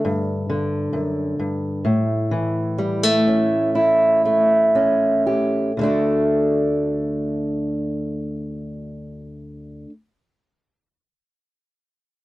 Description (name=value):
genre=folk, solo fingerstyle acoustic guitar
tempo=57-68 BPM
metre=4/4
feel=straight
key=D major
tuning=A4 = 441 Hz
part: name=fingerpicked old ladder-braced acoustic guitar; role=solo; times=0.0-9.9 s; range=D2 to G4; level=-18 LUFS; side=equal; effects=none
room=little or no reverb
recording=dry, close 1970s-style studio recording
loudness=-18 LUFS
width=side -17 dB against mid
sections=0.0-5.8 A section; 5.8-9.9 B section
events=slowing down 0.0-5.8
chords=0.1 G5; 1.8 A; 5.8 D